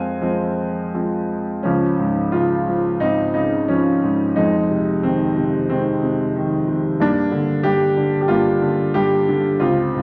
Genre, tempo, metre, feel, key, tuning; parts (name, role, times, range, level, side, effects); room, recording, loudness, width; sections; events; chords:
classical, lyrical solo piano; 90 BPM; 4/4; uneven beats, rubato; Db lydian; A4 = 441 Hz
warm concert grand piano; solo; 0.0-10.0 s; Db2 to Ab5; -19 LUFS; equal
moderate concert hall reverb, RT60 2.0 s; -19 LUFS; mono
0.0-1.6 A section; 1.6-10.0 B section
0.0 Fm; 1.6 Dbmaj7; 4.4 Fm7; 7.0 Gm7